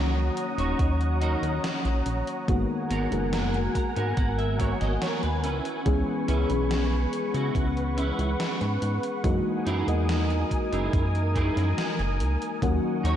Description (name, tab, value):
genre	vaporwave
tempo	71 BPM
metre	4/4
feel	straight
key	C# dorian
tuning	A4 = 438 Hz
part	mellow FM electric piano	accompaniment	0.0-13.2 s	D#3 to D#5	-29 LUFS	left 2 dB	analog chorus, ping-pong delay
part	soft string machine	sustained chords	0.0-13.2 s	A#4 to D#6	-32 LUFS	equal	ensemble chorus
part	chorused synth bass	bass	0.0-13.2 s	D#1 to C#3	-26 LUFS	equal	none
part	gated 80s digital drum machine	drums	0.4-13.2 s	hi-hat, snare drum	-35 LUFS	left 1 dB	gated reverb, gated reverb snare, overdrive
part	clean electric guitar	riff	0.6-13.2 s	B3 to A#5	-34 LUFS	right 2 dB	ensemble chorus, ping-pong delay
part	electronic kick drum	drums	0.8-12.8 s	none	-27 LUFS	equal	overdrive
room	moderate lush hall reverb, RT60 2.8 s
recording	dreamy mix soaked in reverb, cassette tape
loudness	-24 LUFS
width	side -10 dB against mid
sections	0.0-13.2 A section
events	clean electric guitar fill 3.3-5.9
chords	0.0 D#m7; 2.5 G#m9; 5.4 C#m7; 9.2 F#13; 12.6 D#m7